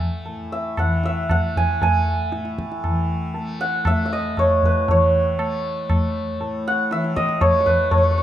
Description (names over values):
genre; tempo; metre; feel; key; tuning
indian classical, Hindustani; 117 BPM; 3/4; straight; A raga yaman; A4 = 440 Hz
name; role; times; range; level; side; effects
santur; melody; 0.0-8.2 s; B4 to G#5; -21 LUFS; right 1 dB; none
tanpura; drone; 0.0-8.2 s; A2 to A3; -28 LUFS; left 1 dB; none
tabla; percussion; 0.3-8.1 s; none; -22 LUFS; equal; none
room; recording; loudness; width
moderate recital hall reverb, RT60 1.5 s; dark, warm production; -18 LUFS; side -12 dB against mid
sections
0.0-4.9 A section; 4.9-8.2 B section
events
none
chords
none